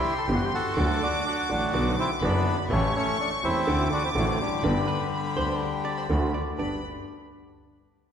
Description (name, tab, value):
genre	tango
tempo	124 BPM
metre	4/4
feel	rubato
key	G major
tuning	A4 = 440 Hz
part	bandoneon	melody	0.0-6.1 s	D3 to A4	-28 LUFS	left 1 dB	none
part	warm studio violin section	second line	0.0-6.8 s	G5 to D6	-33 LUFS	left 1 dB	none
part	clear grand piano	accompaniment	0.3-6.8 s	E1 to G4	-29 LUFS	right 2 dB	none
part	clear double bass	bass	0.3-6.8 s	E1 to D2	-29 LUFS	equal	none
part	archtop guitar, miked and amplified	second line	4.9-6.8 s	B4 to D5	-35 LUFS	right 1 dB	none
room	wet concert hall reverb, RT60 1.9 s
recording	recorded in a church or concert hall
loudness	-23 LUFS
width	side -8 dB against mid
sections	0.0-6.6 A section; 6.6-8.1 B section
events	none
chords	0.0 C; 0.8 D; 1.7 Bm; 2.7 A7; 3.7 D7; 4.6 G; 6.1 D7; 6.6 G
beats	0.29 | 0.77 1.26 1.74 2.22 | 2.70 3.18 3.67 4.15 | 4.63 5.12 5.61 6.10 | 6.59